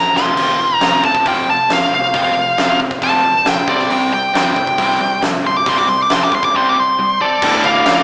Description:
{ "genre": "hard rock", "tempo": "136 BPM", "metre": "4/4", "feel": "straight", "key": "unclear", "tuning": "A4 = 440 Hz", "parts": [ { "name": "high-gain lead guitar", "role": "melody", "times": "0.0-8.0 s", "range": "D5 to D6", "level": "-17 LUFS", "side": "equal", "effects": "distortion" }, { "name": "overdriven electric guitar", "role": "riff", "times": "0.0-8.0 s", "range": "D2 to C4", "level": "-26 LUFS", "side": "equal", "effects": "none" }, { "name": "overdriven semi-hollow guitar", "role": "riff", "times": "0.0-8.0 s", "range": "D2 to C4", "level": "-25 LUFS", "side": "equal", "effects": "none" }, { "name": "growling picked electric bass", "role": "bass", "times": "0.0-8.0 s", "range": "D1 to C#2", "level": "-32 LUFS", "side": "equal", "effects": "overdrive" }, { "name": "huge arena drum kit", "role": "drums", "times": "0.2-8.0 s", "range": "crash cymbal, hi-hat, kick drum, snare drum, toms", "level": "-22 LUFS", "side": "equal", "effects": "none" }, { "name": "tonewheel organ", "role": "sustained chords", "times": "0.4-8.0 s", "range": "F3 to F5", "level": "-32 LUFS", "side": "equal", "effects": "none" }, { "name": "octave-fuzz lead guitar", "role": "second line", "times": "7.2-8.0 s", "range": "A4 to D5", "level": "-20 LUFS", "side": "equal", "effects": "distortion" }, { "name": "distorted electric guitar", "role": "riff", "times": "7.4-8.0 s", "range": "D2 to D3", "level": "-24 LUFS", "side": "equal", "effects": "none" } ], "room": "moderate large studio reverb, RT60 1.5 s", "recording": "band playing live in one room, small speaker sound", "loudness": "-15 LUFS", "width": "mono", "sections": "0.0-7.4 A section", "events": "drum fill 0.0-0.4; lead electric guitar solo 0.0-7.4", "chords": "0.2 F; 3.7 C5; 7.4 Dm", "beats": "| 0.38 0.82 1.26 1.70 | 2.14 2.58 3.02 3.46 | 3.90 4.34 4.78 5.22 | 5.66 6.10 6.54 6.98 | 7.42 7.86" }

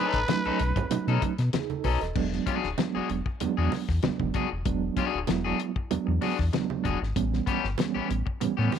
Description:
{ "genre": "funk", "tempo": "96 BPM", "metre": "4/4", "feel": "straight", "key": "unclear", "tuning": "A4 = 440 Hz", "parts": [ { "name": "growling trumpet", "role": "melody", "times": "0.0-1.3 s", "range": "B4", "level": "-30 LUFS", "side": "right 2 dB", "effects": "slapback echo" }, { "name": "electric guitar at the edge of break-up", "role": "accompaniment", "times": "0.0-8.8 s", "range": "B3 to A4", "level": "-32 LUFS", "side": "left 11 dB", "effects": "none" }, { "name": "mellow reed electric piano", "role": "stabs", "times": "0.0-8.8 s", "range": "E3 to D#5", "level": "-30 LUFS", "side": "right 9 dB", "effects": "fast tremolo" }, { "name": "sub bass with octave", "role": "bass", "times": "0.1-8.7 s", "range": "D1 to B2", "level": "-28 LUFS", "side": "left 1 dB", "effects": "none" }, { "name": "damped 70s drum kit", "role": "drums", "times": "0.1-8.8 s", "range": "crash cymbal, hi-hat, kick drum, snare drum", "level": "-31 LUFS", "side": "left 4 dB", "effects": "none" }, { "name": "congas", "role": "percussion", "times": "0.3-8.8 s", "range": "none", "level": "-35 LUFS", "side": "right 8 dB", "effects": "none" } ], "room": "little or no reverb", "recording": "1960s-style stereo with parts hard left and right", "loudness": "-25 LUFS", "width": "side -8 dB against mid", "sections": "0.0-2.2 A section; 2.2-8.8 B section", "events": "none", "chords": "0.0 B9; 2.2 E9; 7.2 A9", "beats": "0.28 0.91 1.53 | 2.16 2.78 3.41 4.03 | 4.66 5.28 5.91 6.53 | 7.16 7.79 8.41" }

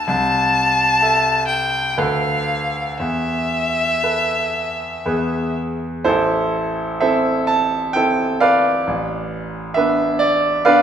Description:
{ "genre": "classical, romantic duo for violin and grand piano", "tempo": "57-68 BPM", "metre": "3/4", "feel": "rubato", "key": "A minor", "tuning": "A4 = 440 Hz", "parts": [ { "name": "warm violin", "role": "melody", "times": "0.0-5.6 s", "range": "E5 to A5", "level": "-18 LUFS", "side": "left 2 dB", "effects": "none" }, { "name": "bright concert grand piano", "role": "accompaniment", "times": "0.0-10.8 s", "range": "A1 to A5", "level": "-18 LUFS", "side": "right 1 dB", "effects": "none" } ], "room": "wet recital hall reverb, RT60 1.6 s", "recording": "minimal, uncompressed stereo recording", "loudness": "-16 LUFS", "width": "side -8 dB against mid", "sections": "0.0-6.1 A section; 6.1-10.8 B section", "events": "none", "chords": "0.1 Am/C; 2.0 Bm7b5/D; 3.0 Esus4; 5.1 E; 6.1 Am; 8.9 Bdim/A", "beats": "| 0.07 1.01 1.97 | 2.99 4.03 5.06 | 6.05 7.01 7.94 | 8.86 9.74 10.64" }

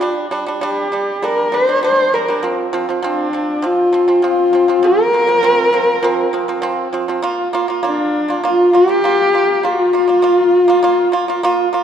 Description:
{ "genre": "mongolian traditional, Mongolian folk", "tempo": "100 BPM", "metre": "4/4", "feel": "straight", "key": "Bb gong mode", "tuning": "A4 = 445 Hz", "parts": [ { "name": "warm horsehead fiddle", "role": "melody", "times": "0.0-11.7 s", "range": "D4 to C5", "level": "-14 LUFS", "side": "left 1 dB", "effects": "none" }, { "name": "pipa", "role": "arpeggios", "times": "0.0-11.8 s", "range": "F3 to F4", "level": "-18 LUFS", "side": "right 2 dB", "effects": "none" } ], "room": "wet concert hall reverb, RT60 1.9 s", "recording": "dark, warm production", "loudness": "-13 LUFS", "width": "side -8 dB against mid", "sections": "0.0-7.2 A section; 7.2-11.8 B section", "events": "none", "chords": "0.0 G5; 2.4 F5; 7.2 Bb5", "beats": "| 0.02 0.62 1.23 1.83 | 2.43 3.03 3.63 4.23 | 4.83 5.44 6.04 6.64 | 7.24 7.83 8.43 9.03 | 9.63 10.23 10.83 11.43" }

